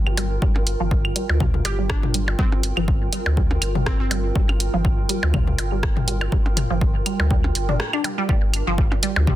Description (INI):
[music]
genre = minimal techno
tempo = 122 BPM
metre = 4/4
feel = swing 55% on 16ths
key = G minor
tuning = A4 = 441 Hz
[part]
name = granular cloud pad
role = texture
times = 0.0-9.4 s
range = F4 to G5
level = -31 LUFS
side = right 3 dB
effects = built-in reverb, sidechain pumping
[part]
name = resonant blip pluck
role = riff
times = 0.1-9.3 s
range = F3 to G4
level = -28 LUFS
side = right 1 dB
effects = phaser, sidechain pumping, tape echo
[part]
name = saturated sub bass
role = bass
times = 0.1-9.4 s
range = G1 to D2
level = -24 LUFS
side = equal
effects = tube saturation, sidechain pumping
[part]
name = electronic claves, percussion blips and toms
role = percussion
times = 0.1-9.4 s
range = none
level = -26 LUFS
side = left 2 dB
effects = tape echo
[part]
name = punchy analog drum machine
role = drums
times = 0.2-9.1 s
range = hi-hat, rim click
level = -25 LUFS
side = right 1 dB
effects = soft clipping on snare
[part]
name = electronic kick drum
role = drums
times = 0.4-9.4 s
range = none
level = -21 LUFS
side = equal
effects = none
[part]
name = glassy wavetable pluck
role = melody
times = 1.6-4.1 s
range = C4 to G4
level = -33 LUFS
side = right 1 dB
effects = chorus, tape echo
[sound]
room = light reverb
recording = dense, heavily limited modern master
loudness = -18 LUFS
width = side -14 dB against mid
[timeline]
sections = 0.0-8.3 A section; 8.3-9.4 B section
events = filter sweep on synth arpeggio sound 0.0-8.3; break 7.8-8.3; band accent 7.8; drop 8.3-9.4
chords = 0.0 Gm7